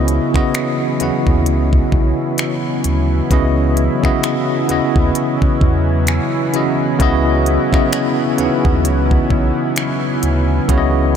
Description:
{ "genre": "contemporary R&B", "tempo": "65 BPM", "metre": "4/4", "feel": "swing 58% on 16ths", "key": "unclear", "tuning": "A4 = 441 Hz", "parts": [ { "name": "bell-like tine electric piano", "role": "accompaniment", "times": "0.0-11.2 s", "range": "Db3 to Ab5", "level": "-17 LUFS", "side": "equal", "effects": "medium stereo tremolo" }, { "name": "chorused pulse-width pad", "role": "sustained chords", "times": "0.0-11.2 s", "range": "Fb3 to Fb4", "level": "-21 LUFS", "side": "right 1 dB", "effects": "none" }, { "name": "warm sub bass", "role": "bass", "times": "0.0-11.2 s", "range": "Cb2 to Fb2", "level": "-18 LUFS", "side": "equal", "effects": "none" }, { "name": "trap drum kit", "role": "drums", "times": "0.1-10.9 s", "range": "finger snaps, hi-hat, kick drum", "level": "-19 LUFS", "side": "equal", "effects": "none" } ], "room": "moderate huge ambient reverb, RT60 8.0 s", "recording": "dreamy mix soaked in reverb", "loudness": "-13 LUFS", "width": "side -8 dB against mid", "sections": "0.0-11.2 A section", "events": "tine electric piano fill 5.6-7.0", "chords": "0.0 Dbm11" }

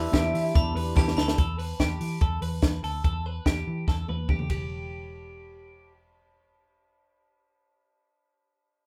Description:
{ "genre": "jangly indie pop", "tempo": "144 BPM", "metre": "4/4", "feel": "straight", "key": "E minor", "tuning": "A4 = 440 Hz", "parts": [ { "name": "soft octave-layered synth lead", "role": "melody", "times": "0.0-1.0 s", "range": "E5", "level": "-33 LUFS", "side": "equal", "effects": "chorus" }, { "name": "glockenspiel with brass mallets", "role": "second line", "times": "0.0-1.4 s", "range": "A5 to B5", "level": "-41 LUFS", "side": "equal", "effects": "none" }, { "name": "mellow electric guitar", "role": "accompaniment", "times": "0.0-1.4 s", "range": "E3 to B4", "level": "-38 LUFS", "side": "equal", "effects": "none" }, { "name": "warm analog keys", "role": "accompaniment", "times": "0.0-1.4 s", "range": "E4 to D5", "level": "-39 LUFS", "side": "equal", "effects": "chorus" }, { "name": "twelve-string electric guitar", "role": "arpeggios", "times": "0.0-5.9 s", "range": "G4 to B4", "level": "-38 LUFS", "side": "equal", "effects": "none" }, { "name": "vintage muted picked electric bass", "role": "bass", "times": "0.0-7.9 s", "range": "E1 to E3", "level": "-34 LUFS", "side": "equal", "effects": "none" }, { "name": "compact cocktail drum kit", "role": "drums", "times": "0.1-4.6 s", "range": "hi-hat, kick drum, ride cymbal, snare drum, toms", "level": "-27 LUFS", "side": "equal", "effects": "none" }, { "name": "group handclap", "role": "percussion", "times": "0.1-1.1 s", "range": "none", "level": "-45 LUFS", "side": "equal", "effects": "none" } ], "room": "moderate studio reverb, RT60 0.5 s", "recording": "band playing live in one room", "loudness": "-27 LUFS", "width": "mono", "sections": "0.0-1.4 A section; 1.4-4.7 B section; 4.7-8.0 C section", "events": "drum fill 1.0-1.4, 3.9-4.7", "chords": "0.0 Em7; 1.4 Em" }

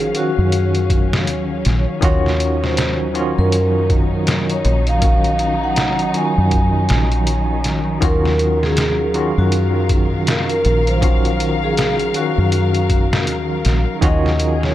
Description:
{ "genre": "trip hop", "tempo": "80 BPM", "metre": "4/4", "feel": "swing 60% on 16ths", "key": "Eb minor", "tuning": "A4 = 440 Hz", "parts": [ { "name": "vibraphone with medium mallets", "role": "melody", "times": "0.0-14.7 s", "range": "Gb4 to Ab5", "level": "-22 LUFS", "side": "equal", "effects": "vintage 12-bit sampler grit, tape echo" }, { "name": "bell-like tine electric piano", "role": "accompaniment", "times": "0.0-14.7 s", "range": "Eb3 to F5", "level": "-22 LUFS", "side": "equal", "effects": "medium stereo tremolo, tape echo" }, { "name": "muted studio string section", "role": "sustained chords", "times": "0.0-14.7 s", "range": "Eb3 to F5", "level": "-24 LUFS", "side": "left 1 dB", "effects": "none" }, { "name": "deep dub fingered electric bass", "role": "bass", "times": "0.0-14.7 s", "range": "Bb1 to Gb2", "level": "-19 LUFS", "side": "equal", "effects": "tube saturation" }, { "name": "trip hop sampler-style drum kit", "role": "drums", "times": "0.0-14.7 s", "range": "hi-hat, kick drum, snare drum", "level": "-19 LUFS", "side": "equal", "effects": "none" } ], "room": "light reverb, digital ambience", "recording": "echo-heavy mix", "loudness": "-14 LUFS", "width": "side -13 dB against mid", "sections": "0.0-14.7 A section", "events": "none", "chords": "0.0 Ebm9" }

